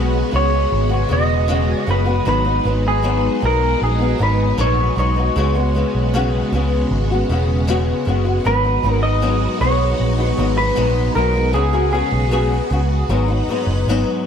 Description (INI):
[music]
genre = indie pop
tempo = 78 BPM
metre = 4/4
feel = straight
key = G# minor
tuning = A4 = 440 Hz
[part]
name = electric guitar through a small old amp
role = melody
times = 0.0-13.4 s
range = G#4 to D#5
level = -21 LUFS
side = right 1 dB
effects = wide subtle chorus, tape echo
[part]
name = flamenco guitar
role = accompaniment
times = 0.0-14.3 s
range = G#2 to G#4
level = -21 LUFS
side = left 4 dB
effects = analog chorus, warbly pitch drift
[part]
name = string machine, violins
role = sustained chords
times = 0.0-14.3 s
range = C#3 to B4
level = -25 LUFS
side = right 1 dB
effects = ensemble chorus
[part]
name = vintage muted picked electric bass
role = bass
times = 0.0-14.0 s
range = E1 to C#2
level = -18 LUFS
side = right 1 dB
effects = none
[sound]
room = light reverb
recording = echo-heavy mix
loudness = -15 LUFS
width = side -8 dB against mid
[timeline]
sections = 0.0-14.3 A section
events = none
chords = 0.0 C#7sus4; 2.3 G#m7; 5.4 C#7sus4; 8.5 G#m7; 11.5 C#7sus4; 13.1 G#m7